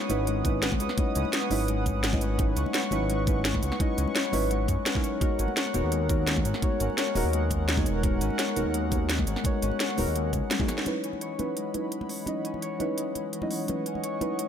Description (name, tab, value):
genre	liquid drum and bass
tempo	170 BPM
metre	4/4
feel	straight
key	C# dorian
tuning	A4 = 439 Hz
part	deep mellow chord stab	accompaniment	0.0-14.5 s	F#3 to D#5	-32 LUFS	right 3 dB	chorus, digital delay
part	warm analog pad	sustained chords	0.0-14.5 s	E3 to D#6	-36 LUFS	right 3 dB	chorus, tremolo, sidechain pumping
part	Celtic harp	arpeggios	0.0-14.5 s	G#3 to C#5	-32 LUFS	left 9 dB	low-pass filter, tape echo
part	drum and bass drum kit	drums	0.0-14.5 s	hi-hat, shaker, snare drum, toms	-30 LUFS	equal	none
part	smooth synth bass	bass	0.1-10.4 s	D#1 to F#2	-29 LUFS	equal	none
part	congas	percussion	0.1-14.3 s	none	-38 LUFS	left 3 dB	none
part	electronic kick drum	drums	0.4-10.7 s	none	-29 LUFS	equal	none
room	light reverb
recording	none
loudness	-25 LUFS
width	side -8 dB against mid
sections	0.0-10.9 A section; 10.9-14.5 B section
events	drop 0.0-10.9; drum fill 10.5-10.9; band accent 10.8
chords	0.0 C#m11; 5.2 G#m9; 10.9 C#m11